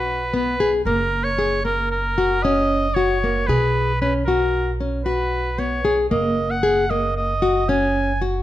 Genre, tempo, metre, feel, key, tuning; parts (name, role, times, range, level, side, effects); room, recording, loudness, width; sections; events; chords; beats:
contemporary instrumental, chamber music in an uneven meter; 114 BPM; 5/4; straight; F# major; A4 = 440 Hz
clear oboe; melody; 0.0-8.2 s; A#4 to G#5; -23 LUFS; right 1 dB
nylon-string guitar; arpeggios; 0.0-8.4 s; A#3 to G#4; -21 LUFS; left 2 dB
upright bass; bass; 0.0-8.4 s; F#1 to B1; -25 LUFS; right 1 dB
moderate recital hall reverb, RT60 1.4 s; dark, warm production; -18 LUFS; side -13 dB against mid
0.0-8.4 A section
0.0 B5; 0.9 F#6; 3.5 Bsus2; 6.1 F#69
0.33 | 0.86 1.38 1.91 2.43 2.96 | 3.48 4.01 4.53 5.06 5.58 | 6.11 6.63 7.16 7.68 8.21